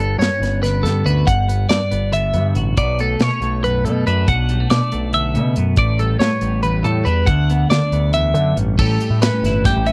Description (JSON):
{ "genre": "math rock and midwest emo", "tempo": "280 BPM (eighths)", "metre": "7/8", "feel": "straight", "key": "unclear", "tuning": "A4 = 439 Hz", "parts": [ { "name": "twelve-string electric guitar", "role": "accompaniment", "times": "0.0-9.9 s", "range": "D2 to G4", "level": "-23 LUFS", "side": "equal", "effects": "none" }, { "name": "twelve-string electric guitar", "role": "arpeggios", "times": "0.0-9.9 s", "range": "G4 to F#5", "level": "-23 LUFS", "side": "equal", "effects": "phaser" }, { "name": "growling picked electric bass", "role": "bass", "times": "0.0-9.9 s", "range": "G1 to D3", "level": "-21 LUFS", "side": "equal", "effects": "overdrive" }, { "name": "modern studio drum kit", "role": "drums", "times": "0.2-9.9 s", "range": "crash cymbal, hi-hat, kick drum, snare drum", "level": "-22 LUFS", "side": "equal", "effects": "none" } ], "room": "little or no reverb", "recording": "dry, close 1970s-style studio recording", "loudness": "-17 LUFS", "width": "mono", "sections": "0.0-8.8 A section; 8.8-9.9 B section", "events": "none", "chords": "0.0 Gmaj9#11; 2.8 Bm9; 5.8 A9sus4; 7.3 D69; 8.8 A9" }